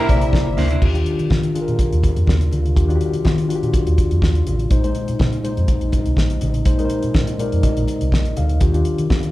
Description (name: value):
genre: disco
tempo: 123 BPM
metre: 4/4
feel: straight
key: unclear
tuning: A4 = 440 Hz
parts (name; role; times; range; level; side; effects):
- warm studio violin section; second line; 0.0-0.8 s; E4 to E5; -28 LUFS; equal; slapback echo
- mellow reed electric piano; accompaniment; 0.0-9.3 s; Bb2 to F5; -23 LUFS; left 3 dB; medium tremolo
- semi-hollow electric guitar; accompaniment; 0.0-0.9 s; Bb3 to C5; -25 LUFS; right 7 dB; slapback echo
- mellow French horn section; sustained chords; 0.0-9.3 s; C3 to F4; -28 LUFS; right 2 dB; none
- warm horn section; stabs; 0.0-0.5 s; E4 to Bb4; -24 LUFS; left 1 dB; slapback echo
- fingered electric bass; bass; 0.1-9.3 s; G1 to Eb3; -20 LUFS; equal; none
- damped 70s drum kit; drums; 0.1-9.3 s; crash cymbal, hi-hat, kick drum, snare drum; -18 LUFS; equal; none
- congas; percussion; 0.1-9.2 s; none; -29 LUFS; left 3 dB; none
room: little or no reverb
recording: live gig heard through the venue's PA, club reverb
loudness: -16 LUFS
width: side -17 dB against mid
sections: 0.8-9.3 A section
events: reed electric piano fill 0.0-0.8, 7.1-8.6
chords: 0.0 C9; 0.8 Ebmaj9; 4.7 Bb9sus4; 8.6 Ebmaj9